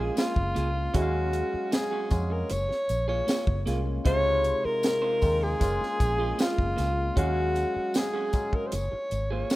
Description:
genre	lush 1970s-style soul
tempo	77 BPM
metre	4/4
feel	straight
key	unclear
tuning	A4 = 440 Hz
part	bright alto saxophone	melody	0.0-9.6 s	F4 to Db5	-28 LUFS	equal	none
part	barky tine electric piano	accompaniment	0.0-8.7 s	C3 to F5	-34 LUFS	left 2 dB	phaser
part	electric guitar through a small old amp	riff	0.0-9.6 s	Bb3 to C5	-37 LUFS	right 5 dB	spring reverb
part	vintage muted fingered electric bass	bass	0.0-9.4 s	Gb1 to F2	-29 LUFS	equal	none
part	tight funk drum kit	drums	0.2-9.6 s	hi-hat, kick drum, snare drum	-28 LUFS	equal	none
part	tambourine	percussion	0.2-9.6 s	none	-45 LUFS	left 6 dB	none
room	light reverb, small room ambience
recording	rough home demo mix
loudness	-24 LUFS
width	side -17 dB against mid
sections	0.0-9.6 A section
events	none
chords	0.0 Gbmaj9; 0.9 Ebm11; 2.5 Gbmaj9; 4.1 Dbmaj9; 5.6 Gbmaj9; 7.2 Ebm11; 8.7 Gbmaj9

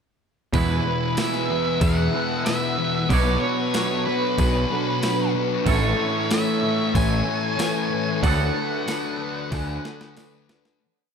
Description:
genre	rock, shoegaze and dream pop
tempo	94 BPM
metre	4/4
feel	straight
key	E mixolydian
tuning	A4 = 440 Hz
part	octave-fuzz lead guitar	melody	0.5-10.1 s	B4 to G#5	-28 LUFS	right 1 dB	distortion, tape echo
part	glassy FM pad	sustained chords	1.4-10.8 s	D4 to E6	-31 LUFS	equal	ensemble chorus, built-in reverb
part	electric guitar through a small old amp	arpeggios	0.5-10.8 s	G#4 to A5	-31 LUFS	equal	wide subtle chorus, tape echo
part	thick fuzz guitar	riff	0.5-10.8 s	E2 to D4	-26 LUFS	left 7 dB	distortion, lush chorus
part	twangy electric guitar	riff	0.5-10.8 s	E2 to C#5	-29 LUFS	right 10 dB	reverse reverb
part	fuzz picked electric bass	bass	0.5-9.8 s	A1 to E2	-24 LUFS	right 1 dB	overdrive
part	crisp 8-bit digital drum machine	drums	0.5-10.8 s	hi-hat, kick drum, snare drum	-25 LUFS	right 1 dB	overdrive
room	moderate lush hall reverb, RT60 1.9 s, digital ambience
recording	dreamy mix soaked in reverb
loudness	-20 LUFS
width	side -6 dB against mid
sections	0.5-10.8 verse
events	fade-out 8.2-10.8; drum fill 9.5-10.8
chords	0.5 Eadd9; 3.1 Bmadd9; 5.7 A; 8.2 D6

